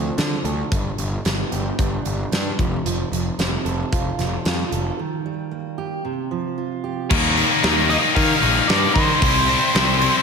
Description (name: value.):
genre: quiet-loud alternative rock.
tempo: 113 BPM.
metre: 4/4.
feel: straight.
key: F lydian.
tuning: A4 = 440 Hz.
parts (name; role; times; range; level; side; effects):
fingerpicked steel-string acoustic guitar; arpeggios; 0.0-7.1 s; G2 to A4; -27 LUFS; right 5 dB; slapback echo, analog delay.
fuzz picked electric bass; bass; 0.0-10.1 s; F1 to Eb3; -24 LUFS; left 1 dB; overdrive.
big rock drum kit; drums; 0.2-10.1 s; crash cymbal, hi-hat, kick drum, snare drum; -23 LUFS; equal; none.
overdriven electric guitar; riff; 7.1-10.2 s; C3 to E4; -23 LUFS; right 10 dB; slapback echo.
scooped high-gain guitar; riff; 7.1-10.2 s; C3 to E4; -19 LUFS; left 12 dB; distortion.
octave-fuzz lead guitar; melody; 7.9-10.2 s; C5 to F5; -21 LUFS; equal; distortion, slapback echo.
room: moderate lush hall reverb, RT60 1.7 s, studio reverb.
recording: big arena sound.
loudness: -18 LUFS.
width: side -5 dB against mid.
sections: 0.0-7.1 A section; 7.1-10.2 B section.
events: break 5.0-7.1.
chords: 0.0 Dm7; 0.7 G; 2.6 F; 5.0 Eb; 6.0 Csus4; 7.1 Ebadd9; 9.2 C.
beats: 0.18 | 0.72 1.25 1.79 2.32 | 2.85 3.39 3.92 4.45 | 4.98 5.51 6.05 6.58 | 7.11 7.63 8.16 8.69 | 9.22 9.75.